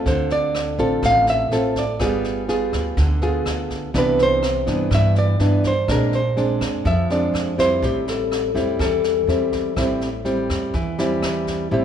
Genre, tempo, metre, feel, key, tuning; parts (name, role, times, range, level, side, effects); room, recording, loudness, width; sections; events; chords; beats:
bossa nova; 124 BPM; 4/4; straight; A minor; A4 = 444 Hz
nylon-string guitar; accompaniment; 0.0-11.8 s; G2 to A4; -22 LUFS; right 1 dB
upright bass; bass; 0.0-11.8 s; G1 to G2; -24 LUFS; equal
nylon-string guitar; melody; 0.1-11.8 s; G4 to F5; -21 LUFS; equal
jazz brush drum kit; drums; 0.1-11.5 s; kick drum, rim click, snare drum; -29 LUFS; equal
moderate recital hall reverb, RT60 1.5 s; recorded in a church or concert hall; -18 LUFS; side -9 dB against mid
0.0-11.7 A section
0.1 Dm7; 2.0 G7b9; 3.9 Cmaj9; 5.9 Bb9; 7.8 Am7
| 0.06 0.55 1.03 1.52 | 2.00 2.49 2.97 3.46 | 3.94 4.43 4.91 5.40 | 5.88 6.37 6.85 7.34 | 7.83 8.31 8.80 9.28 | 9.77 10.26 10.74 11.23 | 11.71